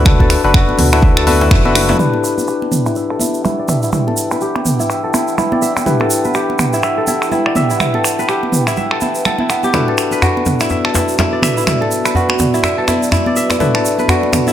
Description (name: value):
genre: afro house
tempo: 124 BPM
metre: 4/4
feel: swing 59% on 16ths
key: E minor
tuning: A4 = 442 Hz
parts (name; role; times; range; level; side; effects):
- kora; arpeggios; 0.0-14.5 s; B3 to E5; -19 LUFS; right 1 dB; sidechain pumping, low-pass filter, tape echo
- barky tine electric piano; stabs; 0.0-14.5 s; D4 to B4; -20 LUFS; left 5 dB; sidechain pumping, low-pass filter, tape echo
- smooth gliding synth bass; bass; 0.0-1.9 s; F#1 to D2; -16 LUFS; right 1 dB; sidechain pumping
- deep house drum kit; drums; 0.1-14.4 s; finger snaps, hi-hat, toms; -19 LUFS; right 1 dB; low-pass filter on snare, low-pass filter on toms, low-pass filter on hats
- electronic kick drum; drums; 0.1-1.6 s; none; -12 LUFS; equal; none
- congas; percussion; 0.1-14.5 s; none; -22 LUFS; right 2 dB; none
- djembe; percussion; 0.1-2.0, 9.7-14.4 s; none; -20 LUFS; left 1 dB; none
- dark analog pad; sustained chords; 2.9-14.5 s; B3 to G5; -21 LUFS; equal; chorus, sidechain pumping
- egg shaker; percussion; 2.0-14.5 s; none; -24 LUFS; right 3 dB; none
room: light reverb, small room ambience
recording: none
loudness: -12 LUFS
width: side -11 dB against mid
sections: 0.0-2.0 A section; 2.0-14.5 B section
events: band accent 1.5; drum fill 1.8; filter sweep on drum 2.0-14.5; filter sweep on kora 2.0-14.5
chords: 0.0 Bm7; 2.0 Em7; 9.7 Bm7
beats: | 0.06 0.54 1.03 1.51 | 2.00 2.48 2.96 3.45 | 3.93 4.41 4.90 5.38 | 5.87 6.35 6.83 7.32 | 7.80 8.29 8.77 9.25 | 9.74 10.22 10.71 11.19 | 11.67 12.16 12.64 13.12 | 13.61 14.09